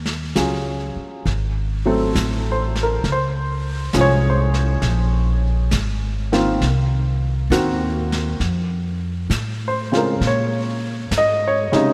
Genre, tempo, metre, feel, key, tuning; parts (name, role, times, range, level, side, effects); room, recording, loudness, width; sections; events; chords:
jazz ballad; 67 BPM; 4/4; swing 68% on 8ths; A4 = 440 Hz
upright bass; bass; 0.0-11.8 s; Ab1 to Bb2; -23 LUFS; equal
vintage brush drum kit; drums; 0.1-11.9 s; brushed snare drum, hi-hat, snare drum; -32 LUFS; equal
warm upright piano; accompaniment; 0.4-11.9 s; C3 to Eb5; -23 LUFS; equal
moderate lush hall reverb, RT60 2.8 s; dreamy mix soaked in reverb; -20 LUFS; mono
0.0-11.9 A section
0.0 Ebm11; 1.3 Ab7b9; 3.0 Dbmaj7; 6.6 Cm7b5; 8.4 F; 10.2 Bbm11